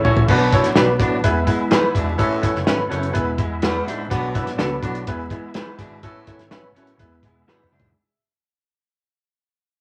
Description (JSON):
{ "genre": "uptempo 1960s-style soul", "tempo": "125 BPM", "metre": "4/4", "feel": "straight", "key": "unclear", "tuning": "A4 = 441 Hz", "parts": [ { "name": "bright upright piano", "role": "accompaniment", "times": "0.0-8.2 s", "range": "B3 to G#5", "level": "-26 LUFS", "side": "equal", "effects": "none" }, { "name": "overdriven tonewheel organ", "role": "sustained chords", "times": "0.0-8.0 s", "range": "F#3 to E4", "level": "-31 LUFS", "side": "equal", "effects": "slow rotary speaker, chorus vibrato" }, { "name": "electric guitar at the edge of break-up", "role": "riff", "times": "0.0-7.9 s", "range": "G#3 to A4", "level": "-33 LUFS", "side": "equal", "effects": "spring reverb" }, { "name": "fingered electric bass", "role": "bass", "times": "0.0-7.9 s", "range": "E1 to E3", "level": "-29 LUFS", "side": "equal", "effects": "none" }, { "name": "cloth-damped thuddy drum kit", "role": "drums", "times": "0.0-7.9 s", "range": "crash cymbal, hi-hat, kick drum, snare drum, toms", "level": "-23 LUFS", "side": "equal", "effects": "none" }, { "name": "raspy baritone saxophone", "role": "riff", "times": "0.1-7.9 s", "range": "E2 to B2", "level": "-31 LUFS", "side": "equal", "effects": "none" }, { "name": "electric guitar through a small old amp", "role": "stabs", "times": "0.8-7.6 s", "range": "C#4 to B4", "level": "-24 LUFS", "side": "equal", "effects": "none" } ], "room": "wet studio reverb, RT60 0.6 s", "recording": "vinyl crackle", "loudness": "-19 LUFS", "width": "mono", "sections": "0.3-8.0 A section", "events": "drum fill 0.0, 7.5-8.0; fade-out 0.3-8.0", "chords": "0.3 Bm; 1.2 E; 2.2 Aadd9; 3.2 E; 4.1 Bm; 5.1 E; 6.0 Aadd9; 7.0 E" }